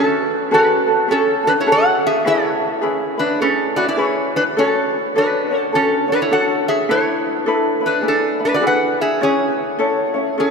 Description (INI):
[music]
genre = Hawaiian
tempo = 103 BPM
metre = 4/4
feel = swing 61% on 8ths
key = unclear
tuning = A4 = 440 Hz
[part]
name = metal-body resonator slide guitar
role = melody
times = 0.0-10.5 s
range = C#4 to F#5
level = -18 LUFS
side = equal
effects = none
[part]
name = ukulele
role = accompaniment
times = 0.0-10.5 s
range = C#4 to C#5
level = -18 LUFS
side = equal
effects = none
[sound]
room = wet cathedral reverb, RT60 5.1 s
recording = recorded in a church or concert hall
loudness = -15 LUFS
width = side -5 dB against mid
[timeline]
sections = 0.0-10.5 A section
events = none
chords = 0.0 F#madd9; 2.2 C#m7; 4.6 Dmaj7; 6.9 E7sus4; 8.0 E7; 9.2 A